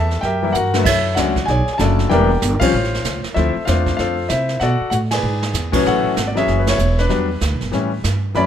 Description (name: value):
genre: jazz piano trio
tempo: 192 BPM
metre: 4/4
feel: swing 62% on 8ths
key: unclear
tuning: A4 = 440 Hz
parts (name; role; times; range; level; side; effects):
- warm concert grand piano; melody; 0.0-8.5 s; A2 to B5; -18 LUFS; left 3 dB; none
- upright bass; bass; 0.0-8.5 s; E1 to C3; -20 LUFS; right 1 dB; none
- jazz brush drum kit; drums; 0.1-8.5 s; brushed snare drum, crash cymbal, hi-hat, kick drum, ride cymbal, snare drum; -24 LUFS; right 4 dB; none
room: light reverb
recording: minimal, uncompressed stereo recording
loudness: -15 LUFS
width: side -9 dB against mid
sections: 0.0-5.9 A section; 5.9-8.5 B section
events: drum fill 0.5-0.9, 4.9-5.5; band accent 2.6, 5.1, 6.6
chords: 0.2 F#7b9; 0.9 Bm9; 2.1 Em7b5; 2.7 Aaug; 3.4 Dm9; 4.6 Bm7; 5.2 E9; 7.1 Em7; 7.7 A7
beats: 0.23 0.55 | 0.86 1.17 1.48 1.79 | 2.11 2.42 2.73 3.04 | 3.35 3.67 3.98 4.29 | 4.60 4.91 5.23 5.54 | 5.85 6.16 6.47 6.79 | 7.10 7.41 7.72 8.04 | 8.35